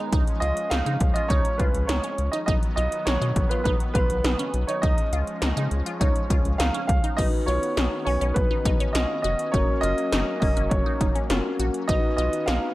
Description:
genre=synth-pop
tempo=102 BPM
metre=4/4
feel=straight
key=unclear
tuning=A4 = 440 Hz
part: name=brassy analog pad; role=sustained chords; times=0.0-12.7 s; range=Eb3 to Db4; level=-34 LUFS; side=left 1 dB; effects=chorus
part: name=resonant blip pluck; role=arpeggios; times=0.0-12.7 s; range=Db4 to Gb4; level=-33 LUFS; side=right 1 dB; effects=phaser, tape echo
part: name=rubbery square bass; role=bass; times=0.1-12.6 s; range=F1 to Db3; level=-26 LUFS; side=equal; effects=none
part: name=80s electronic pad drums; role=drums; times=0.1-12.6 s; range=crash cymbal, hi-hat, kick drum, snare drum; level=-24 LUFS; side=equal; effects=none
part: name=warm grand piano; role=melody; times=0.4-12.7 s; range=Cb5 to F5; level=-27 LUFS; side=right 2 dB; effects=none
part: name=mellow tine electric piano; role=accompaniment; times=7.2-12.7 s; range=Db4 to Cb5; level=-30 LUFS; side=left 3 dB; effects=none
room=little or no reverb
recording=dry, gritty hardware recording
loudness=-21 LUFS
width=side -17 dB against mid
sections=0.0-7.2 A section; 7.2-12.7 B section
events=none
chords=0.1 Db; 2.5 Cb; 4.8 Db; 7.2 Cbadd9; 9.5 Gb; 11.9 Cbadd9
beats=| 0.13 0.71 1.30 1.89 | 2.48 3.07 3.65 4.24 | 4.83 5.42 6.01 6.60 | 7.18 7.77 8.36 8.95 | 9.54 10.13 10.71 11.30 | 11.89 12.48

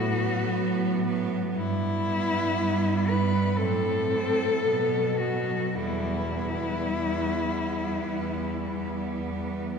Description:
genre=classical, lyrical piece for cello ensemble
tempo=51-60 BPM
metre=4/4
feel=rubato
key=E minor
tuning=A4 = 440 Hz
part: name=rich cello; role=melody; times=0.0-9.2 s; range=E4 to B4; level=-28 LUFS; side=left 3 dB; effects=none
part: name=rich cello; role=second line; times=0.0-9.8 s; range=B3 to C4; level=-34 LUFS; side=right 5 dB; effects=none
part: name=rich cello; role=accompaniment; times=0.0-9.8 s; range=F#3 to G3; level=-32 LUFS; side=equal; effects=none
part: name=rich cello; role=bass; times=0.0-9.8 s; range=E2 to B2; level=-30 LUFS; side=right 2 dB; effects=none
room=wet cathedral reverb, RT60 4.5 s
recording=recorded in a church or concert hall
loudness=-24 LUFS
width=side -6 dB against mid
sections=0.0-9.8 A section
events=none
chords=0.0 B5/A; 1.6 Em/G; 3.6 F#dim/A; 4.6 B5; 5.7 Em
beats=0.56 | 1.55 2.56 3.57 4.62 | 5.74 6.91 8.06 9.18

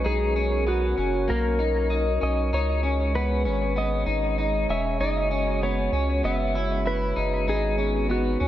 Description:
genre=dream pop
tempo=97 BPM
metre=4/4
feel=straight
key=B major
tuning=A4 = 440 Hz
part: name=clean lap steel guitar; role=melody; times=0.0-8.5 s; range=F#4 to E5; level=-28 LUFS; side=equal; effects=analog delay
part: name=glass harmonica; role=sustained chords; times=0.0-8.5 s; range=G#3 to C#5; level=-31 LUFS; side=equal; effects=none
part: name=electric guitar at the edge of break-up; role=arpeggios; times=0.0-8.5 s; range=A#3 to E4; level=-28 LUFS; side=left 2 dB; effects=lush chorus, analog delay
part: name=round analog bass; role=bass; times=0.0-8.5 s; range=E1 to D#2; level=-26 LUFS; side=equal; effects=none
room=moderate plate reverb, RT60 2.6 s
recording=echo-heavy mix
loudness=-22 LUFS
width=side -12 dB against mid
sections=0.0-8.5 A section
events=none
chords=0.1 Bmaj9; 2.5 C#m9; 5.0 F#9sus4; 7.5 G#m7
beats=| 0.06 0.67 1.29 1.91 | 2.53 3.15 3.77 4.38 | 5.00 5.62 6.24 6.86 | 7.48 8.10

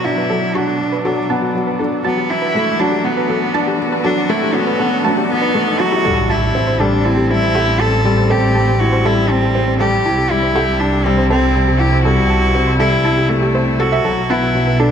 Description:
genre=piano and strings electronica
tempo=120 BPM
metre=4/4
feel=straight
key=A dorian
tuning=A4 = 439 Hz
part: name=rich cello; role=melody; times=0.0-14.9 s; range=A3 to A4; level=-18 LUFS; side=right 1 dB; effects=none
part: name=muted string quartet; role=sustained chords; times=0.0-14.9 s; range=A2 to A4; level=-23 LUFS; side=left 1 dB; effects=none
part: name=felt-muted upright piano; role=riff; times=0.0-14.9 s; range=F#3 to A4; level=-18 LUFS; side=left 3 dB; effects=ping-pong delay
part: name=riser and impact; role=sound effects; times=2.0-8.0 s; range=none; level=-26 LUFS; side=right 1 dB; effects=none
part: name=soft round pluck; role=arpeggios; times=0.2-14.9 s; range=F#4 to A5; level=-24 LUFS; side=right 3 dB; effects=chorus, vintage 12-bit sampler grit, ping-pong delay
part: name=rich chamber double bass section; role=bass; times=6.0-14.9 s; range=A1 to C2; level=-18 LUFS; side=right 1 dB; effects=none
room=moderate concert hall reverb, RT60 1.9 s, small room ambience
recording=none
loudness=-13 LUFS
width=side -8 dB against mid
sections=0.0-6.0 A section; 6.0-14.9 B section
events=build-up 0.0-6.0; filter sweep on string quartet 0.0-6.0; filter sweep on synth arpeggio sound 0.0-6.0; riser 2.0-6.0; drop 6.0-14.9; impact 6.0-8.0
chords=0.0 Bm7; 2.0 Em11; 6.0 Am7; 10.0 C6; 14.0 Bm7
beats=| 0.05 0.55 1.05 1.55 | 2.05 2.55 3.05 3.55 | 4.05 4.55 5.05 5.55 | 6.05 6.55 7.05 7.55 | 8.05 8.55 9.05 9.55 | 10.05 10.55 11.05 11.55 | 12.05 12.55 13.05 13.55 | 14.05 14.55

